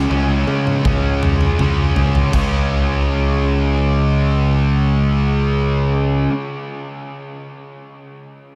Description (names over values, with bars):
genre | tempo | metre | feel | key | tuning
rock, shoegaze and dream pop | 81 BPM | 4/4 | straight | unclear | A4 = 440 Hz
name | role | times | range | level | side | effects
fuzz guitar | riff | 0.0-6.3 s | Db3 to Db4 | -21 LUFS | equal | distortion, subtle chorus
modern bright picked electric bass | bass | 0.0-6.3 s | Db2 to Db3 | -21 LUFS | equal | none
huge arena drum kit | drums | 0.1-2.5 s | crash cymbal, kick drum, toms | -23 LUFS | equal | none
room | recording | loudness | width
wet huge ambient reverb, RT60 7.7 s | dreamy mix soaked in reverb | -17 LUFS | mono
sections
0.0-2.3 A section; 2.3-5.3 B section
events
drum fill 0.0-2.3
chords
0.0 Db5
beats
0.10 0.84 1.59 | 2.33 3.07 3.81 4.56